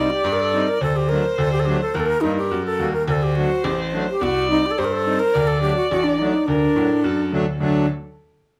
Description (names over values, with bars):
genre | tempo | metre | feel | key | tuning
klezmer | 106 BPM | 2/4 | straight | D phrygian dominant | A4 = 440 Hz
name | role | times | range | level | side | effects
breathy mellow silver concert flute | melody | 0.0-7.9 s | D4 to Bb4 | -23 LUFS | equal | none
warm violin | second line | 0.0-7.9 s | A4 to D5 | -27 LUFS | equal | none
accordion | accompaniment | 0.0-7.9 s | F#3 to F#4 | -28 LUFS | equal | none
clear baby grand piano | bass | 0.2-7.9 s | A1 to A2 | -26 LUFS | equal | none
room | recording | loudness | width
wet small room reverb, RT60 0.5 s | heard from further back in the room | -20 LUFS | mono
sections
0.0-7.6 A section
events
none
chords
0.0 Cm; 0.8 D; 1.9 Eb; 3.1 D; 4.2 Cm; 5.3 D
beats
0.24 | 0.81 1.38 | 1.94 2.51 | 3.08 3.64 | 4.21 4.78 | 5.34 5.91 | 6.47 7.04 | 7.60